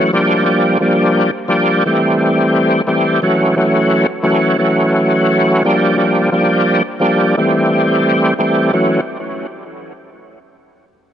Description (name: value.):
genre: hip hop.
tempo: 87 BPM.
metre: 4/4.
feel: swing 58% on 16ths.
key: unclear.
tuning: A4 = 439 Hz.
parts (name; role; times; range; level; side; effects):
overdriven tonewheel organ; solo; 0.0-9.0 s; E3 to G4; -12 LUFS; equal; chorus vibrato, slow rotary speaker, high-pass filter, low-pass filter, analog delay.
room: light reverb.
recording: echo-heavy mix, nothing above 10.6 kHz.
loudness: -11 LUFS.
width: side -9 dB against mid.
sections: 0.0-8.7 A section; 8.7-11.1 B section.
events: none.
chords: 0.1 Gm7; 1.8 Am7; 3.2 F#m7; 5.6 Gm7; 7.4 Am7; 8.7 F#m7.